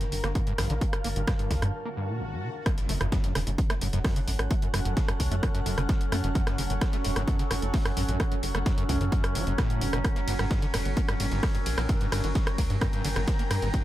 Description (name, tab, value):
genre	driving peak-time techno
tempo	130 BPM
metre	4/4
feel	straight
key	F# phrygian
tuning	A4 = 441 Hz
part	overdriven acid bass	riff	0.0-13.8 s	G1 to Bb3	-33 LUFS	equal	ensemble chorus, sidechain pumping, tape echo
part	overtone-sweeping drone	drone	0.0-13.8 s	F#3 to C#4	-37 LUFS	equal	chorus, built-in reverb, sidechain pumping
part	breakbeat sampler-style drum kit	drums	0.0-13.8 s	hi-hat, snare drum	-45 LUFS	right 1 dB	none
part	punchy analog drum machine	drums	0.0-13.8 s	hi-hat, ride cymbal, rim click	-33 LUFS	right 1 dB	sidechain pumping on hats, sidechain pumping on cymbals
part	granular cloud pad	texture	0.0-13.8 s	D3 to Bb5	-36 LUFS	right 1 dB	built-in reverb, sidechain pumping
part	tight sequencer bass	bass	0.1-13.7 s	E1 to G2	-29 LUFS	equal	sidechain pumping
part	electronic kick drum	drums	0.4-13.8 s	none	-27 LUFS	equal	overdrive
part	swell and impact	sound effects	1.9-4.5 s	none	-39 LUFS	equal	none
room	light reverb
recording	none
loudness	-25 LUFS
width	side -14 dB against mid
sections	0.0-2.7 A section; 2.7-13.8 B section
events	filter sweep on acid bass 0.0-2.7; break 1.7-2.7; swell 1.9-2.7; drop 2.7-13.8; impact 2.7-4.5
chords	0.0 Gm; 2.7 F#m; 10.0 Gm